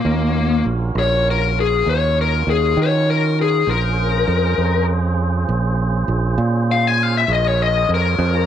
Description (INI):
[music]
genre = slow blues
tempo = 66 BPM (dotted quarters)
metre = 12/8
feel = straight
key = Bb minor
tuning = A4 = 440 Hz
[part]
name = smooth overdriven lead guitar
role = melody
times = 0.0-8.5 s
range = Bb3 to Ab5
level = -18 LUFS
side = left 6 dB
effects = none
[part]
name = tonewheel organ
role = sustained chords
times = 0.0-8.5 s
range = Db4 to Db5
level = -27 LUFS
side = right 2 dB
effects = slow rotary speaker
[part]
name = fingered electric bass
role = bass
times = 0.0-8.5 s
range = Bb1 to Eb3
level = -18 LUFS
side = right 2 dB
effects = none
[sound]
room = light reverb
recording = none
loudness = -15 LUFS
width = side -9 dB against mid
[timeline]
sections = 0.0-8.5 A section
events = lead electric guitar solo 0.0-8.5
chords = 0.1 Ebm7; 3.7 Bbm7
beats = | 0.05 0.96 1.86 2.77 | 3.67 4.57 5.48 6.38 | 7.29 8.19